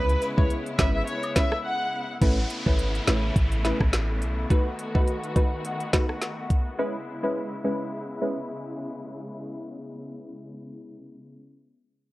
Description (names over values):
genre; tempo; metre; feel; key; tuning
dancehall; 105 BPM; 4/4; swing 56% on 16ths; C# minor; A4 = 440 Hz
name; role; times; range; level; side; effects
rich studio violin section; melody; 0.0-2.1 s; B4 to F#5; -29 LUFS; equal; tape echo
wavetable chord stab; accompaniment; 0.0-8.4 s; G#3 to B4; -28 LUFS; equal; low-pass filter
rich studio string section; sustained chords; 0.0-11.3 s; C#3 to F#4; -35 LUFS; left 1 dB; sidechain pumping, low-pass filter
clean 808-style bass; bass; 0.0-4.5 s; G#1 to C#2; -26 LUFS; equal; none
island pop drum kit; drums; 0.1-6.7 s; crash cymbal, hi-hat, kick drum, rim click, snare drum; -24 LUFS; equal; none
cabasa and woodblock; percussion; 0.2-1.5 s; none; -38 LUFS; left 3 dB; none
downlifter; sound effects; 2.2-6.8 s; none; -38 LUFS; equal; none
room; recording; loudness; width
digital ambience; worn, warbling old tape, cassette tape, warbly pitch drift; -23 LUFS; side -18 dB against mid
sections
0.0-2.2 A section; 2.2-11.4 B section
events
break 1.6-2.2; filter sweep 2.2-11.4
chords
0.0 C#m7; 2.2 Aadd9; 4.5 B7; 6.8 C#m7